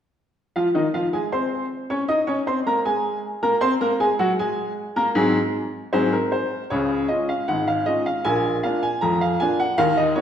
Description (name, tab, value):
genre	ragtime piano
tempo	78 BPM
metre	2/4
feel	straight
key	Db major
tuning	A4 = 440 Hz
part	clear upright piano	solo	0.6-10.2 s	Ab1 to Eb6	-19 LUFS	equal	none
room	wet recital hall reverb, RT60 1.5 s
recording	recorded in a church or concert hall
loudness	-20 LUFS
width	side -9 dB against mid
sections	0.6-6.7 A section; 6.7-10.2 B section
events	none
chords	0.6 Db; 3.6 Ab7; 6.7 Db; 8.3 Bb